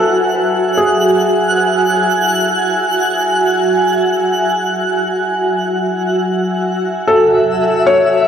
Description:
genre	ambient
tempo	free time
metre	none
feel	none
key	F# minor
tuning	A4 = 441 Hz
part	felt-muted upright piano	melody	0.0-1.9, 7.1-8.3 s	G#4 to C#5	-16 LUFS	left 1 dB	shimmer reverb, diffuse ambient delay
part	granular cloud pad	sustained chords	0.0-8.3 s	F#4 to G#5	-14 LUFS	right 1 dB	built-in reverb, shimmer reverb
part	twinkling granular texture	texture	0.0-8.3 s	E5 to F#6	-20 LUFS	equal	built-in reverb, shimmer reverb
part	overdriven tine electric piano	arpeggios	7.1-8.3 s	A4	-17 LUFS	right 1 dB	phaser, shimmer reverb
room	wet concert hall reverb, RT60 2.5 s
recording	none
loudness	-12 LUFS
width	side -8 dB against mid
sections	0.0-8.3 A section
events	none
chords	0.0 F#7sus2; 7.1 A5/F#

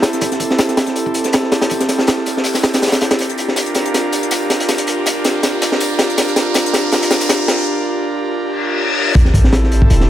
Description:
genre	drum and bass, jungle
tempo	161 BPM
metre	4/4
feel	swing 54% on 16ths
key	A phrygian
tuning	A4 = 441 Hz
part	airy breathy pad	sustained chords	0.0-10.1 s	C4 to Bb4	-18 LUFS	right 1 dB	chorus
part	crisp fusion drum kit	drums	0.0-7.4 s	hi-hat, snare drum, tambourine	-24 LUFS	left 2 dB	high-pass filter on hats, high-pass filter on snare, high-pass filter on perc, high-pass filter on room
part	crunchy breakbeat drum kit	drums	0.0-10.1 s	hi-hat, kick drum, snare drum	-16 LUFS	equal	high-pass filter on kick, high-pass filter on hats, high-pass filter on snare, high-pass filter on room
part	riser, reverse cymbal and sub drop	sound effects	0.4-10.1 s	none	-23 LUFS	left 1 dB	none
part	warm 808-style bass	bass	9.2-10.1 s	E1 to A1	-13 LUFS	equal	none
room	light reverb, studio reverb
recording	none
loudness	-13 LUFS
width	side -12 dB against mid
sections	0.0-9.2 A section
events	build-up 0.0-9.2; riser 0.4-7.7; drum fill 3.2-7.7; break 7.7-9.2; reverse cymbal 8.5-9.2; impact 9.2-10.1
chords	0.0 Am7; 3.2 Gm7; 9.2 Am7

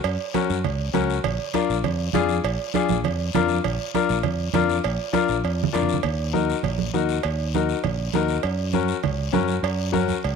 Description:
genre	latin, cumbia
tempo	200 BPM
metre	4/4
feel	straight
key	Eb minor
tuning	A4 = 439 Hz
part	fingered electric bass	bass	0.0-10.4 s	Bb1 to Gb2	-26 LUFS	right 1 dB	none
part	cowbell and timbales	percussion	0.0-10.4 s	none	-30 LUFS	right 13 dB	none
part	guiro	percussion	0.0-10.4 s	none	-36 LUFS	left 12 dB	none
part	clear upright piano	accompaniment	0.3-10.1 s	Db4 to Bb4	-24 LUFS	left 10 dB	none
part	congas	percussion	0.3-10.2 s	none	-27 LUFS	right 13 dB	none
room	light reverb, small room ambience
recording	1960s-style stereo with parts hard left and right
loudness	-21 LUFS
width	side -6 dB against mid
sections	0.0-6.0 A section; 6.0-10.4 B section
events	drum fill 5.1-6.0, 10.1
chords	0.0 Gb; 1.2 Bb; 6.0 Ebm; 8.4 Gb

